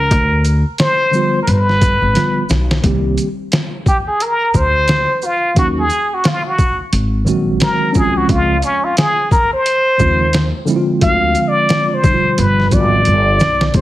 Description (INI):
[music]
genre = hip hop, jazz-hop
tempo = 88 BPM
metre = 4/4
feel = swing 60% on 16ths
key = C minor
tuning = A4 = 441 Hz
[part]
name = trumpet with plunger mute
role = melody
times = 0.0-13.8 s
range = Db4 to F5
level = -15 LUFS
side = equal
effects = slapback echo
[part]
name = upright bass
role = bass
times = 0.0-13.8 s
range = G1 to Eb2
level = -16 LUFS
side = equal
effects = none
[part]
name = trip hop sampler-style drum kit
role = drums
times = 0.1-13.8 s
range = hi-hat, kick drum, shaker, snare drum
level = -17 LUFS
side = equal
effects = none
[part]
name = mellow tine electric piano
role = accompaniment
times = 1.1-13.8 s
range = B2 to G4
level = -18 LUFS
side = right 1 dB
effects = medium stereo tremolo
[sound]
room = light reverb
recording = heavily compressed radio sound, faint mains hum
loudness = -12 LUFS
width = side -15 dB against mid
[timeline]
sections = 0.0-2.8 A section; 2.8-13.7 B section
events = drum fill 2.2-2.8, 13.1-13.7; muted trumpet solo 2.8-13.7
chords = 0.1 Dm7; 1.5 G7; 2.8 Cm7; 5.6 Ebm7; 6.9 Ab7; 8.3 Dbmaj7; 11.0 Dm7b5; 12.4 G7